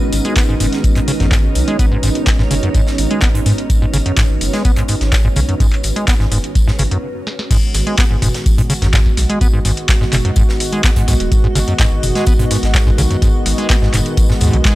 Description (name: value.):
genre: acid house.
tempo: 126 BPM.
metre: 4/4.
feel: straight.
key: G# minor.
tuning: A4 = 440 Hz.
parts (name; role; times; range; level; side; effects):
warm analog pad; sustained chords; 0.0-14.8 s; D#3 to F#4; -23 LUFS; right 2 dB; chorus, sidechain pumping.
granular cloud pad; texture; 0.0-14.8 s; C#4 to D#5; -26 LUFS; equal; built-in reverb, sidechain pumping.
saturated sub bass; bass; 0.1-14.6 s; D#1 to G#2; -18 LUFS; equal; tube saturation, sidechain pumping.
booming analog drum machine; drums; 0.1-14.7 s; crash cymbal, handclaps, hi-hat, snare drum, toms; -21 LUFS; equal; none.
modern studio drum kit; drums; 0.1-14.8 s; hi-hat, snare drum, tambourine; -28 LUFS; left 1 dB; high-pass filter on hats, high-pass filter on snare, high-pass filter on perc, high-pass filter on room.
acid bass, square; riff; 0.2-14.8 s; F#2 to B3; -19 LUFS; equal; none.
electronic kick drum; drums; 0.4-14.7 s; none; -15 LUFS; equal; none.
room: studio ambience.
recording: dry, gritty hardware recording, transformer saturation.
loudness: -12 LUFS.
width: side -17 dB against mid.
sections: 0.0-7.5 A section; 7.5-14.8 B section.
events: stop 7.0-7.5; drum fill 7.3; band accent 7.4; drop 7.5-14.8.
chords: 0.0 G#m7.